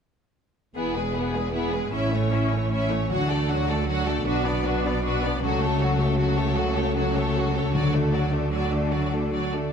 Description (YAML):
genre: cinematic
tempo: 154 BPM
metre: 3/4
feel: straight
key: D lydian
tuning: A4 = 440 Hz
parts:
  - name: mellow French horn section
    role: sustained chords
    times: 0.7-9.7 s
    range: A3 to G#4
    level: -31 LUFS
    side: left 1 dB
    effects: none
  - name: rich symphonic violin section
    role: melody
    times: 0.8-9.7 s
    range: G#4 to F#5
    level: -32 LUFS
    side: equal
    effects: none
  - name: warm symphonic violin section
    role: second line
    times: 0.8-9.7 s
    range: C#4 to A4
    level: -30 LUFS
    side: left 2 dB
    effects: none
  - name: rich symphonic viola section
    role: accompaniment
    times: 0.8-9.7 s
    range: F#3 to D4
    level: -30 LUFS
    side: left 1 dB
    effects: none
  - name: concert harp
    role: arpeggios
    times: 0.8-9.7 s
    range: E2 to B4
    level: -31 LUFS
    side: left 7 dB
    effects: none
  - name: rich studio double bass section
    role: bass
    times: 0.8-9.7 s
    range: E1 to D2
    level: -29 LUFS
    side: right 4 dB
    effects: none
  - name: rich symphonic cello section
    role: bass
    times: 0.8-9.7 s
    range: E2 to D3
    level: -29 LUFS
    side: right 2 dB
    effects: none
  - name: timpani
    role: percussion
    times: 7.7-8.3 s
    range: D3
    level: -31 LUFS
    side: left 1 dB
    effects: none
room: moderate scoring stage reverb, RT60 1.6 s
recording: none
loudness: -22 LUFS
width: side -7 dB against mid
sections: 0.8-9.7 A section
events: build-up 0.8-9.7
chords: 0.8 E; 1.9 A; 3.1 D; 4.3 Bm; 5.4 F#m/C#; 7.7 D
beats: | 0.76 1.15 1.54 | 1.93 2.32 2.71 | 3.10 3.49 3.88 | 4.26 4.65 5.04 | 5.43 5.81 6.19 | 6.58 6.96 7.36 | 7.75 8.13 8.53 | 8.93 9.33